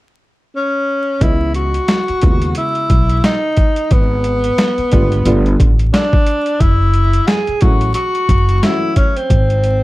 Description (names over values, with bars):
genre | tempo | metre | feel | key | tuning
hip hop, jazz-hop | 89 BPM | 4/4 | swing 58% on 16ths | C# minor | A4 = 439 Hz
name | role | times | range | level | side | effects
breathy tenor saxophone | melody | 0.6-9.8 s | B3 to G#4 | -17 LUFS | equal | slapback echo
dark upright piano | accompaniment | 1.2-9.2 s | C#3 to D#5 | -20 LUFS | right 1 dB | none
upright bass | bass | 1.2-9.8 s | F#1 to D#2 | -16 LUFS | equal | none
boom bap sampler-style drum kit | drums | 1.2-9.8 s | hi-hat, kick drum, snare drum | -14 LUFS | equal | overdrive
room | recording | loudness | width
little or no reverb | dark, warm production, vinyl crackle | -12 LUFS | side -18 dB against mid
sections
0.0-1.2 A section; 1.2-9.8 B section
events
none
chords
0.0 N.C.; 1.2 C#m9; 3.9 G#dim; 5.3 G9; 6.6 F#m7; 9.3 G#